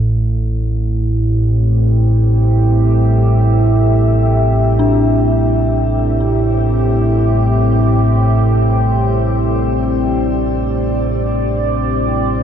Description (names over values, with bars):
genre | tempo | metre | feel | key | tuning
dark ambient drone | free time | none | none | unclear | A4 = 440 Hz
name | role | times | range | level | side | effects
deep dark ambient pad | sustained chords | 0.8-12.4 s | A2 to E5 | -17 LUFS | equal | chorus, built-in reverb, shimmer reverb
deep rumbling drone | drone | 0.0-12.4 s | A1 to A2 | -14 LUFS | equal | built-in reverb
dark detuned synth bell | arpeggios | 4.8-12.4 s | D4 | -23 LUFS | left 4 dB | chorus, ping-pong delay, shimmer reverb
room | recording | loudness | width
wet cathedral reverb, RT60 6.2 s | none | -12 LUFS | side -9 dB against mid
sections
0.0-12.4 A section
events
none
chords
0.0 C/A